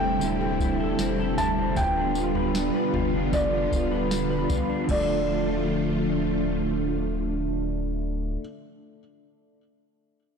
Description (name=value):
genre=dream pop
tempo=77 BPM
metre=4/4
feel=straight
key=D dorian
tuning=A4 = 441 Hz
part: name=felt-muted upright piano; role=melody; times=0.0-8.4 s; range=D5 to A5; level=-30 LUFS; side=equal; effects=tape echo
part: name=mellow electric guitar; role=accompaniment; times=0.0-8.5 s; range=D3 to B4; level=-33 LUFS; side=right 4 dB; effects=tremolo, ensemble chorus
part: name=string machine, cellos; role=sustained chords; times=0.0-8.4 s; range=C3 to F4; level=-28 LUFS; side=equal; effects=ensemble chorus
part: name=electric guitar through a small old amp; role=arpeggios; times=0.0-8.5 s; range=D3 to B4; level=-30 LUFS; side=equal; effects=analog chorus, tape echo
part: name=sub bass with octave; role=bass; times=0.0-8.4 s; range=D1 to F1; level=-32 LUFS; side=equal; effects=transformer saturation
part: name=soft vintage rhythm box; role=drums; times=0.2-5.1 s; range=crash cymbal, kick drum, snare drum, tambourine, toms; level=-31 LUFS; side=equal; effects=none
room=moderate concert hall reverb, RT60 2.2 s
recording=blown-out, overdriven recording, overdrive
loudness=-23 LUFS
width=side -6 dB against mid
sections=0.0-4.9 A section; 4.9-8.0 B section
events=none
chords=0.0 Am7/D; 1.8 G7/D; 4.9 Dm